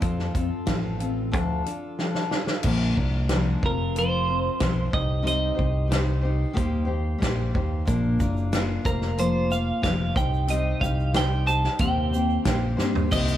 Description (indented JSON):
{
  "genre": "folk rock and heartland rock",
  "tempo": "92 BPM",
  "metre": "4/4",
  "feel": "straight",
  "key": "unclear",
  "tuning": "A4 = 438 Hz",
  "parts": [
    { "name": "picked steel-string acoustic guitar", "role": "accompaniment", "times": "0.0-13.4 s", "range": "Bb2 to C5", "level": "-28 LUFS", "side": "left 3 dB", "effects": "none" },
    { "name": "fingered electric bass", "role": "bass", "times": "0.0-13.4 s", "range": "F1 to G2", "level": "-26 LUFS", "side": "equal", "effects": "none" },
    { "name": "natural country drum kit", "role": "drums", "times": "0.0-13.4 s", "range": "crash cymbal, hi-hat, kick drum, snare drum, toms", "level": "-27 LUFS", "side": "equal", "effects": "none" },
    { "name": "twelve-string electric guitar", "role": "melody", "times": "3.7-13.4 s", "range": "Bb4 to A5", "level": "-27 LUFS", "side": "right 3 dB", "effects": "none" },
    { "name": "tube shaker", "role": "percussion", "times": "7.9-13.3 s", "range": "none", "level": "-48 LUFS", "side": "right 12 dB", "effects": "none" }
  ],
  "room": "light reverb, small room ambience",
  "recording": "none",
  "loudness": "-22 LUFS",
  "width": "side -12 dB against mid",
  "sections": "0.0-2.6 A section; 2.6-13.1 B section",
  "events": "drum fill 2.0-2.6, 12.8-13.1",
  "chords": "0.0 F; 1.3 Dm; 2.6 Bb; 3.6 Fsus4; 4.9 Cm; 6.6 Eb6; 7.9 Bb; 8.9 Fsus4; 10.2 Cm; 11.8 Eb6"
}